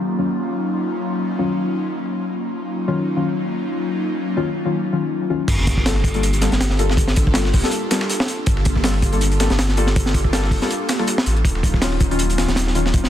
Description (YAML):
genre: drum and bass, jungle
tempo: 161 BPM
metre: 4/4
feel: swing 55% on 16ths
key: unclear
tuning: A4 = 440 Hz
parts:
  - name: airy breathy pad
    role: sustained chords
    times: 0.0-13.1 s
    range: Gb3 to A4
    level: -24 LUFS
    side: equal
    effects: chorus
  - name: deep mellow chord stab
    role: stabs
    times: 0.2-12.9 s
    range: Eb3 to A4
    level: -24 LUFS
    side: left 4 dB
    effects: wide subtle chorus, dub echo
  - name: saturated sub bass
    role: bass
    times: 5.5-13.1 s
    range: Eb1 to A1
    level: -20 LUFS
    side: equal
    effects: tube saturation
  - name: breakbeat sampler-style drum kit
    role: drums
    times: 5.5-13.0 s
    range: hi-hat, snare drum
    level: -30 LUFS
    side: left 1 dB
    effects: high-pass filter on hats, high-pass filter on snare, high-pass filter on room
  - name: crunchy breakbeat drum kit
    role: drums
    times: 5.5-13.1 s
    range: crash cymbal, hi-hat, kick drum, snare drum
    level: -19 LUFS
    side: equal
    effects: none
  - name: sub drop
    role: sound effects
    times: 5.5-7.0 s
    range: none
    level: -29 LUFS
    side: right 1 dB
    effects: none
room: light reverb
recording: dense, heavily limited modern master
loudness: -17 LUFS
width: side -11 dB against mid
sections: 0.0-5.5 A section; 5.5-13.1 B section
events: filter sweep on analog synth pad 0.0-5.5; filter sweep on synth stab 0.0-5.5; drop 5.5-13.1; impact 5.5-7.0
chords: 0.0 Ebm9; 5.5 Gm9; 11.4 Ebm9